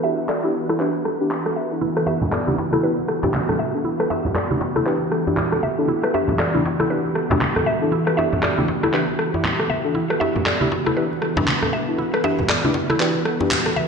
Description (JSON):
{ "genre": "afro house", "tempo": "118 BPM", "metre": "4/4", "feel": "swing 60% on 16ths", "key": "E minor", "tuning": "A4 = 437 Hz", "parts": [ { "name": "ethereal airy pad", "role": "sustained chords", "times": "0.0-13.9 s", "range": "E3 to B4", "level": "-25 LUFS", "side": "right 1 dB", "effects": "ensemble chorus, built-in reverb" }, { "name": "mallet-like synth pluck", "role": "arpeggios", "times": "0.0-13.9 s", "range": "E4 to E5", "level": "-26 LUFS", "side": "equal", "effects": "chorus, ping-pong delay" }, { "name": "deep mellow chord stab", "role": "stabs", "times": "0.0-13.5 s", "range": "D4 to A4", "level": "-25 LUFS", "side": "left 2 dB", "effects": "chorus, ping-pong delay" }, { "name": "electronic rim click and handclaps", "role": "drums", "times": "0.3-13.7 s", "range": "none", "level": "-24 LUFS", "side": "equal", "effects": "overdrive, gated reverb" }, { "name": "congas", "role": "percussion", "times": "1.8-13.9 s", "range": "none", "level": "-27 LUFS", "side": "right 2 dB", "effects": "none" }, { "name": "djembe", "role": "percussion", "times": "2.1-13.5 s", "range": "none", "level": "-29 LUFS", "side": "left 2 dB", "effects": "none" } ], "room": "wet lush hall reverb, RT60 1.9 s, digital ambience", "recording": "bright 1980s-style digital production, low-pass filter", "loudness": "-18 LUFS", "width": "side -5 dB against mid", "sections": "0.0-13.9 A section", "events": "filter sweep on synth pluck 0.0-13.9; filter sweep 0.0-13.9", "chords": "0.0 Em7" }